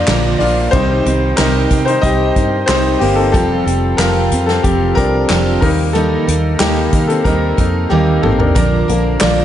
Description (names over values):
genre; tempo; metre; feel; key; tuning
piano-driven pop; 92 BPM; 4/4; straight; unclear; A4 = 442 Hz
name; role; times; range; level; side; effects
clear concert grand piano; accompaniment; 0.0-9.4 s; D3 to Eb5; -15 LUFS; left 3 dB; slapback echo
picked steel-string acoustic guitar; riff; 0.0-9.4 s; Bb2 to Bb4; -18 LUFS; right 6 dB; slapback echo
vintage muted fingered electric bass; bass; 0.0-9.4 s; F1 to Eb3; -18 LUFS; equal; none
downlifter; sound effects; 0.0-3.3 s; none; -32 LUFS; right 1 dB; none
unplugged drum kit; drums; 0.1-9.4 s; handclaps, hi-hat, kick drum, snare drum, toms; -18 LUFS; equal; none
room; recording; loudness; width
moderate lush hall reverb, RT60 3.0 s; big arena sound, nothing above 10.5 kHz; -11 LUFS; side -11 dB against mid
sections
0.0-9.4 A section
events
grand piano solo 0.0-9.4; drum fill 7.9-8.6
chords
0.0 Bb; 0.7 Cm; 3.3 Fsus2; 5.6 Eb; 8.6 Bb